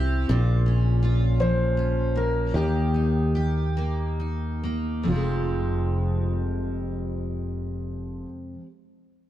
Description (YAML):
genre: six-eight pop ballad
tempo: 43-55 BPM (dotted quarters)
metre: 6/8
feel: straight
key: F minor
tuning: A4 = 442 Hz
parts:
  - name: picked steel-string acoustic guitar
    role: accompaniment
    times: 0.0-8.7 s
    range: F2 to G4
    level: -27 LUFS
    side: equal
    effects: double-tracked left and right
  - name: fingered electric bass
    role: bass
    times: 0.0-8.2 s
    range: F1 to Eb2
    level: -25 LUFS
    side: equal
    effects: none
  - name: dark baby grand piano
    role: melody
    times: 1.4-8.3 s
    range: F4 to C5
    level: -30 LUFS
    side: left 1 dB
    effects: slapback echo
room: small room ambience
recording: dark, warm production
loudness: -22 LUFS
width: side -13 dB against mid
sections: 0.3-5.1 A section; 5.1-9.3 B section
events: slowing down 0.3-5.1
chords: 0.3 Bbm; 2.5 Eb; 5.1 Fmadd9